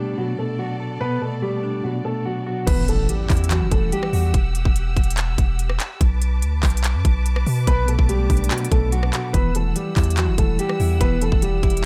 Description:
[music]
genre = hip hop, trap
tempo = 144 BPM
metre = 4/4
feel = half-time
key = E minor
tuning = A4 = 440 Hz
[part]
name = dark concert grand piano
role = melody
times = 0.0-4.3, 7.7-11.8 s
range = F#3 to B4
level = -28 LUFS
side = equal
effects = none
[part]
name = mellow electric guitar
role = accompaniment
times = 0.0-4.3, 7.7-11.9 s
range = B2 to A4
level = -29 LUFS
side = equal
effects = harmonic tremolo
[part]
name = rich studio string section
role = sustained chords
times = 0.0-11.9 s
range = G3 to E6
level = -37 LUFS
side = equal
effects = none
[part]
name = long sustained 808-style bass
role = bass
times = 2.7-11.9 s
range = E1 to B2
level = -23 LUFS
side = equal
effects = none
[part]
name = trap drum kit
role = drums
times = 2.7-11.8 s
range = crash cymbal, handclaps, hi-hat, kick drum, rim click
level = -23 LUFS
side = equal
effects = none
[part]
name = impact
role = sound effects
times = 2.7-4.3 s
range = none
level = -29 LUFS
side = equal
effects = none
[sound]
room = little or no reverb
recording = none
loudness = -21 LUFS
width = mono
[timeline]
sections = 0.0-2.7 A section; 2.7-11.9 B section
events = impact 2.7-4.3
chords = 0.0 Bm7; 2.7 Emadd9; 6.0 Bm7; 9.3 Emadd9

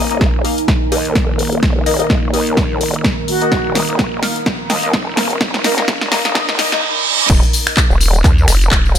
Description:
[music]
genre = bass house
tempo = 127 BPM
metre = 4/4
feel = swing 57% on 16ths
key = unclear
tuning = A4 = 441 Hz
[part]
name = dark analog pad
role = sustained chords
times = 0.9-9.0 s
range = Eb3 to Bb4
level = -25 LUFS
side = right 1 dB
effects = chorus, phaser, vintage 12-bit sampler grit, sidechain pumping
[part]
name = band-passed chord stab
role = stabs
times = 0.0-6.8 s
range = Bb3 to F5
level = -22 LUFS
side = left 4 dB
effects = phaser, lush chorus, sidechain pumping, ping-pong delay
[part]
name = vowel-sweep wobble bass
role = bass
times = 0.0-9.0 s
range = Eb1 to Eb2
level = -18 LUFS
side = equal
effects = chorus, overdrive, sidechain pumping, high-pass filter
[part]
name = riser and reverse cymbal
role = sound effects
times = 3.2-7.3 s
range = none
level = -21 LUFS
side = right 5 dB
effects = none
[part]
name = deep dark ambient pad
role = texture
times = 0.0-6.8 s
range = Eb4 to Bb5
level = -25 LUFS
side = right 1 dB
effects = chorus, built-in reverb, sidechain pumping
[part]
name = house drum kit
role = drums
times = 0.1-9.0 s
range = crash cymbal, finger snaps, handclaps, hi-hat, snare drum, tambourine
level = -18 LUFS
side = equal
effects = studio reverb
[part]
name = electronic kick drum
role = drums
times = 0.2-8.8 s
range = none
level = -16 LUFS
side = equal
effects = studio reverb
[part]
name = mellow concert flute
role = melody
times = 1.9-5.8 s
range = Gb4 to Bb4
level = -23 LUFS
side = right 3 dB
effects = ping-pong delay
[sound]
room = light reverb, digital ambience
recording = high-pass filter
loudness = -12 LUFS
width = side -9 dB against mid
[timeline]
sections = 0.0-7.3 A section; 7.3-9.0 B section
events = build-up 0.0-7.3; drum fill 0.0-6.8; filter sweep 0.0-7.3; reverse cymbal 6.4-7.3; drop 7.3-9.0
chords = 0.0 Eb5

